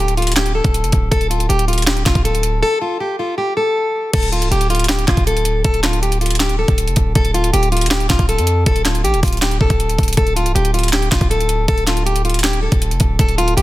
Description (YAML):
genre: hip hop, trap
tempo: 159 BPM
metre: 4/4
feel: half-time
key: D minor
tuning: A4 = 440 Hz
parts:
  - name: fingerpicked plugged-in steel-string acoustic guitar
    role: melody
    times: 0.0-13.6 s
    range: F4 to A4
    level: -19 LUFS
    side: left 1 dB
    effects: ping-pong delay
  - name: hard-hitting 808-style bass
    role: bass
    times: 0.0-13.6 s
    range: C1 to F2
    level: -18 LUFS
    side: equal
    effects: none
  - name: trap drum kit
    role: drums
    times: 0.1-13.6 s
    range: crash cymbal, handclaps, hi-hat, kick drum, snare drum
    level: -17 LUFS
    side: equal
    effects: overdrive
room: little or no reverb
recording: dense, heavily limited modern master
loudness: -14 LUFS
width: side -17 dB against mid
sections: 0.0-4.1 A section; 4.1-13.6 B section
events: break 2.6-4.1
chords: 0.0 D5; 4.1 Dm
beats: 0.36 0.74 | 1.12 1.49 1.87 2.25 | 2.63 3.00 3.38 3.76 | 4.14 4.51 4.89 5.27 | 5.64 6.02 6.40 6.78 | 7.16 7.53 7.91 8.29 | 8.66 9.04 9.42 9.80 | 10.17 10.55 10.93 11.30 | 11.68 12.06 12.44 12.81 | 13.19 13.57